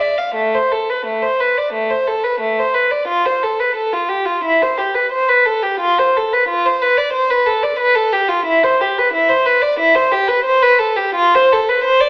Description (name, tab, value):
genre	classical, baroque-style suite movement for unaccompanied violin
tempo	89 BPM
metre	4/4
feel	rubato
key	C major from 8.5 s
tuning	A4 = 440 Hz
part	warm violin	solo	0.0-12.1 s	A3 to F5	-13 LUFS	equal	none
room	wet stone room reverb, RT60 1.3 s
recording	heard from further back in the room, AM radio sound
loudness	-13 LUFS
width	side -26 dB against mid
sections	0.0-12.1 A section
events	none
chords	none